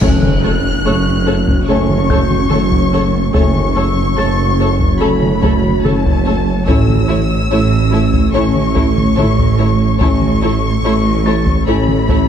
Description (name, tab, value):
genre	cinematic, hybrid orchestral and electronic film score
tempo	72 BPM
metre	4/4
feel	straight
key	F# phrygian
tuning	A4 = 436 Hz
part	rich studio violin section	melody	0.0-12.3 s	A5 to F#6	-22 LUFS	left 5 dB	none
part	warm symphonic violin section	second line	0.0-12.2 s	A4 to C#5	-24 LUFS	left 3 dB	none
part	rich symphonic viola section	accompaniment	0.0-12.2 s	A3 to A4	-22 LUFS	right 1 dB	none
part	ethereal airy pad	sustained chords	0.8-12.3 s	A3 to C#5	-20 LUFS	equal	ensemble chorus, built-in reverb
part	warm French horn section	sustained chords	0.0-12.0 s	A3 to C#4	-24 LUFS	left 6 dB	none
part	mellow tuba	bass	0.0-12.3 s	F#1 to A1	-21 LUFS	right 4 dB	none
part	pure sine sub bass	bass	0.0-12.3 s	F#1 to A1	-21 LUFS	left 1 dB	none
part	warm symphonic cello section	bass	0.0-12.3 s	F#2 to A2	-20 LUFS	right 2 dB	none
part	warm symphonic double bass section	bass	0.0-12.3 s	F#1 to A1	-20 LUFS	right 3 dB	none
part	solo taiko drums	drums	0.0-12.3 s	none	-18 LUFS	left 1 dB	none
part	impact	sound effects	0.0-3.3 s	none	-22 LUFS	left 1 dB	none
part	warm grand piano	texture	0.0-12.3 s	A5 to A6	-31 LUFS	left 1 dB	ping-pong delay
room	moderate concert hall reverb, RT60 2.1 s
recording	dark, warm production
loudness	-11 LUFS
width	side -8 dB against mid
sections	0.0-12.3 A section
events	impact 0.0-3.3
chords	0.0 F#m; 6.7 A